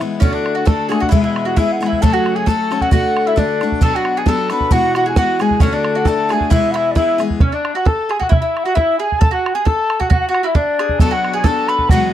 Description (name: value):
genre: celtic folk, Celtic polka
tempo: 133 BPM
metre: 2/4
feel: swing 53% on 8ths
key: E mixolydian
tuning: A4 = 440 Hz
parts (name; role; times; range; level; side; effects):
- picked steel-string acoustic guitar; accompaniment; 0.0-7.4, 11.0-12.1 s; E2 to G#4; -19 LUFS; left 5 dB; none
- bodhran; percussion; 0.0-12.0 s; none; -15 LUFS; right 2 dB; none
- mellow wooden flute; melody; 0.2-12.1 s; C#5 to B5; -19 LUFS; left 1 dB; none
- dark cor anglais; second line; 0.2-12.1 s; C#4 to A4; -24 LUFS; left 5 dB; none
- mandolin; second line; 0.2-12.1 s; C#4 to B4; -23 LUFS; right 8 dB; none
room: small room ambience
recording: dry, close 1970s-style studio recording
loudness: -13 LUFS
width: side -11 dB against mid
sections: 0.2-7.4 A section; 7.4-12.1 A section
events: none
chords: 0.2 D; 1.1 E; 2.0 F#m; 2.9 D; 3.8 Bm; 4.7 Eadd9; 5.6 D; 6.5 E; 7.4 N.C.; 11.0 Bm